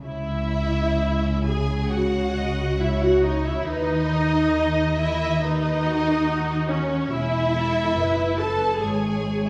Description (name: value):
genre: classical, slow romantic movement for string orchestra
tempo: 63-72 BPM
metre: 4/4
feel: rubato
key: C# minor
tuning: A4 = 440 Hz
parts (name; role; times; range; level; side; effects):
- dark symphonic cello section; bass; 0.0-9.5 s; E2 to D#3; -31 LUFS; equal; none
- warm symphonic violin section; second line; 0.1-9.5 s; C#5 to A5; -32 LUFS; equal; none
- warm symphonic viola section; accompaniment; 0.1-9.5 s; C#4 to A4; -26 LUFS; equal; none
- warm symphonic double bass section; bass; 0.1-9.5 s; E1 to D#2; -29 LUFS; equal; none
- warm symphonic violin section; melody; 1.9-9.5 s; F#4 to D#5; -34 LUFS; equal; none
room: moderate scoring stage reverb, RT60 1.8 s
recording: small room ambience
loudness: -23 LUFS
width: mono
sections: 0.0-9.5 A section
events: none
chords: 0.0 C#m; 3.7 D#m7; 7.1 E5; 8.8 C#5/G#